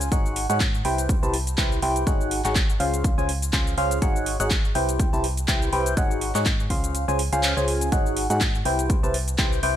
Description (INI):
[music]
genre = piano house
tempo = 123 BPM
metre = 4/4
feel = swing 56% on 16ths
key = unclear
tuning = A4 = 440 Hz
[part]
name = barking FM electric piano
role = riff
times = 0.0-9.8 s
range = Db4 to A5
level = -25 LUFS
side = equal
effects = phaser, sidechain pumping, dub echo
[part]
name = solid FM bass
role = bass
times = 0.0-9.8 s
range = Ab1 to Ab2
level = -28 LUFS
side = equal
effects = sidechain pumping
[part]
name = house drum kit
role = drums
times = 0.0-9.7 s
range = handclaps, hi-hat, shaker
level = -28 LUFS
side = equal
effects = small room ambience
[part]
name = electronic kick drum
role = drums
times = 0.1-9.5 s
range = none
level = -24 LUFS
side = equal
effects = small room ambience
[sound]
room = little or no reverb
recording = none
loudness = -20 LUFS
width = side -11 dB against mid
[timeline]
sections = 0.0-7.9 A section; 7.9-9.8 A section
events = kick drops out 6.9-7.9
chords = 0.1 Ab7sus4; 0.8 Cmaj7; 2.1 Ab7sus4; 2.8 Dbmaj7; 4.0 Ab7sus4; 4.8 Cmaj7; 6.0 Ab7sus4; 6.7 Dbmaj7; 7.9 Ab7sus4; 8.7 Cmaj7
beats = | 0.12 0.60 1.09 1.58 | 2.07 2.56 3.04 3.53 | 4.02 4.51 5.00 5.48 | 5.97 6.46 6.95 7.43 | 7.92 8.41 8.90 9.39